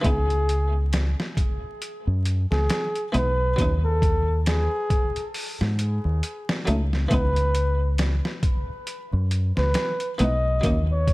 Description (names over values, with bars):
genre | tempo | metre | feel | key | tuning
trip hop | 68 BPM | 4/4 | swing 58% on 16ths | C# minor | A4 = 444 Hz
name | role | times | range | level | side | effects
buff-stop harpsichord | accompaniment | 0.0-11.1 s | E3 to D#4 | -27 LUFS | equal | tremolo, vintage 12-bit sampler grit, tape echo
deep dub fingered electric bass | bass | 0.0-11.1 s | B1 to G#2 | -22 LUFS | equal | tube saturation
trip hop sampler-style drum kit | drums | 0.0-11.1 s | hi-hat, kick drum, snare drum | -26 LUFS | equal | overdrive, studio reverb
trumpet with bucket mute | melody | 0.1-11.1 s | G#4 to D#5 | -28 LUFS | equal | vintage 12-bit sampler grit, tape echo
room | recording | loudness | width
small room ambience | vinyl crackle | -21 LUFS | side -21 dB against mid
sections
0.0-11.1 A section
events
none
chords
0.0 C#m7; 3.6 D#m7; 7.1 C#m7; 10.6 D#m7